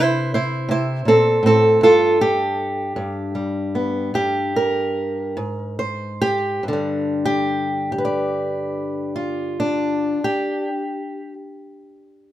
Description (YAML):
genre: acoustic country blues, solo or duo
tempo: 46-54 BPM (dotted quarters)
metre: 12/8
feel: straight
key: unclear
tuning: A4 = 440 Hz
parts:
  - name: fingerpicked old ladder-braced acoustic guitar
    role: solo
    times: 0.0-11.3 s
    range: G2 to D5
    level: -18 LUFS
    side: equal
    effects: none
room: light reverb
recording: minimal, uncompressed stereo recording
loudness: -18 LUFS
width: side -13 dB against mid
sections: 0.0-6.6 A section; 6.6-11.8 B section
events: slowing down 0.3-6.6; stop 1.8-5.4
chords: 0.0 C7; 1.8 N.C.; 6.6 G7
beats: 0.70 | 1.83 2.97 4.15 5.36 | 6.63 7.92 9.22 10.51